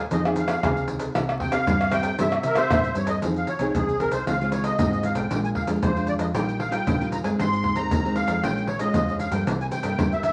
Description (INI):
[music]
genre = samba and choro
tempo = 115 BPM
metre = 4/4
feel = straight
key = F minor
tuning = A4 = 437 Hz
[part]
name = musette accordion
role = melody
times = 0.0-10.3 s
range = Ab4 to C6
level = -29 LUFS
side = equal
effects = none
[part]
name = nylon-string guitar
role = accompaniment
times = 0.0-10.3 s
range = G2 to Ab4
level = -30 LUFS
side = equal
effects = none
[part]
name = fingered electric bass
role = bass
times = 0.0-10.3 s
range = G1 to C3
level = -32 LUFS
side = equal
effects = none
[part]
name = maracas, surdo, pandeiro and tamborim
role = percussion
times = 0.1-10.3 s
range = none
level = -29 LUFS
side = equal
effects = none
[sound]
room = wet studio reverb, RT60 0.8 s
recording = vinyl crackle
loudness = -24 LUFS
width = mono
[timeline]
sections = 0.0-3.2 A section; 3.2-10.3 B section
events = none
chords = 0.1 Fm7; 1.1 C; 3.2 Fm7; 4.3 Dbmaj7; 5.3 Bb7; 6.3 Ebadd9/Bb; 7.4 Ab; 8.4 Bbm7; 9.5 C7